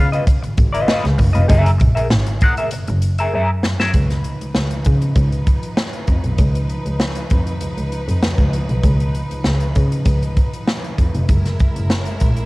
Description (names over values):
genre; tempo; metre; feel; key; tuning
funk; 98 BPM; 4/4; straight; Db mixolydian; A4 = 440 Hz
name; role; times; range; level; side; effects
clean electric guitar; accompaniment; 0.0-3.9 s; F4 to Gb5; -20 LUFS; left 1 dB; wah, cassette tape
rich double bass; bass; 0.0-12.4 s; F1 to Db3; -18 LUFS; equal; tube saturation
swinging big-band drum kit; drums; 0.1-12.5 s; hi-hat, kick drum, snare drum; -18 LUFS; equal; cassette tape
rich studio string section; sustained chords; 3.9-12.5 s; F3 to Cb5; -29 LUFS; equal; cassette tape
room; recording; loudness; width
small room ambience; home recording on cassette; -15 LUFS; side -21 dB against mid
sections
0.0-3.9 A section; 3.9-12.5 B section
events
drum fill 3.3-3.9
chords
0.0 Db9; 1.5 Gb9; 3.9 Db9; 11.3 Gb9